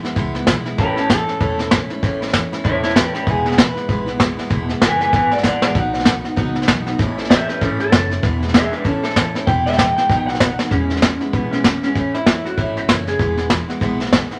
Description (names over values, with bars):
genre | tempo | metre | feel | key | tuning
rockabilly | 193 BPM | 4/4 | swing 60% on 8ths | E major | A4 = 439 Hz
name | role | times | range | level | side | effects
picked steel-string acoustic guitar | accompaniment | 0.0-14.4 s | E2 to F#4 | -27 LUFS | equal | none
upright bass | bass | 0.0-14.2 s | E1 to E2 | -30 LUFS | equal | none
vintage brush drum kit | drums | 0.0-14.3 s | hi-hat, kick drum, snare drum | -20 LUFS | equal | none
electric guitar through a small old amp | melody | 0.8-13.5 s | B3 to G#5 | -23 LUFS | equal | spring reverb
room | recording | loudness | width
moderate studio reverb, RT60 0.6 s | none | -17 LUFS | mono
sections
0.0-10.7 A section; 10.7-14.4 B section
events
clean electric guitar solo 0.0-10.7; drum fill 5.4-5.8, 10.6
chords
0.0 E; 0.8 A; 3.3 E; 5.8 B; 7.0 A; 8.2 E; 8.8 A; 9.5 E; 10.1 B; 10.7 E; 12.0 A; 13.2 E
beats
0.17 0.48 | 0.79 1.10 1.41 1.72 | 2.03 2.34 2.65 2.96 | 3.27 3.58 3.89 4.20 | 4.51 4.82 5.13 5.44 | 5.75 6.06 6.37 6.68 | 6.99 7.30 7.61 7.92 | 8.23 8.54 8.85 9.16 | 9.47 9.78 10.09 10.40 | 10.71 11.02 11.33 11.64 | 11.95 12.26 12.57 12.88 | 13.20 13.51 13.82 14.13